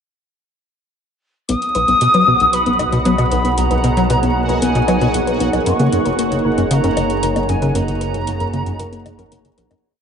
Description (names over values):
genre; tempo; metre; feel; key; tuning
ambient, sequencer-driven space music; 115 BPM; 4/4; straight; B major; A4 = 440 Hz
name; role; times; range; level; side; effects
concert flute; melody; 1.5-9.3 s; F#5 to D#6; -18 LUFS; left 1 dB; ping-pong delay
lush unison pad; sustained chords; 1.5-9.8 s; A#3 to C#5; -22 LUFS; right 1 dB; chorus
soft round pluck; arpeggios; 1.5-9.8 s; A#3 to B4; -22 LUFS; left 1 dB; chorus, auto-pan, ping-pong delay
tight sequencer bass; riff; 1.5-9.7 s; F#1 to F#3; -19 LUFS; equal; lush chorus, ping-pong delay
analog drone; bass; 2.3-9.8 s; F#1 to B1; -24 LUFS; equal; chorus
electronic hi-hat and woodblock; percussion; 1.5-9.8 s; none; -29 LUFS; left 4 dB; none
bubbling stepped-filter texture; texture; 1.9-9.8 s; F#4 to F#5; -26 LUFS; right 1 dB; chorus, built-in reverb
room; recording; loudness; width
wet cathedral reverb, RT60 6.6 s; in a vast, echoing space, nothing above 10.8 kHz; -14 LUFS; side -7 dB against mid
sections
1.5-9.8 A section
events
fade-in on analog synth pad 1.5-9.8; fade-out 7.1-9.8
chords
1.5 B; 5.7 F#